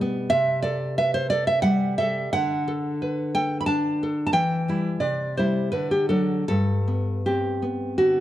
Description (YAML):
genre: romantic piece for solo classical guitar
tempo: 88 BPM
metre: 3/4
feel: uneven beats, rubato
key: G major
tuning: A4 = 445 Hz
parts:
  - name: nylon-string guitar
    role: solo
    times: 0.0-8.2 s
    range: G2 to B5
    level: -21 LUFS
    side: equal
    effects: none
room: moderate recital hall reverb, RT60 1.5 s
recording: worn, warbling old tape, cassette tape, warbly pitch drift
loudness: -21 LUFS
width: side -13 dB against mid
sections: 0.0-8.2 A section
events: none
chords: 0.3 Am7/C; 2.3 D; 4.3 Em; 5.0 C; 5.7 D; 6.5 G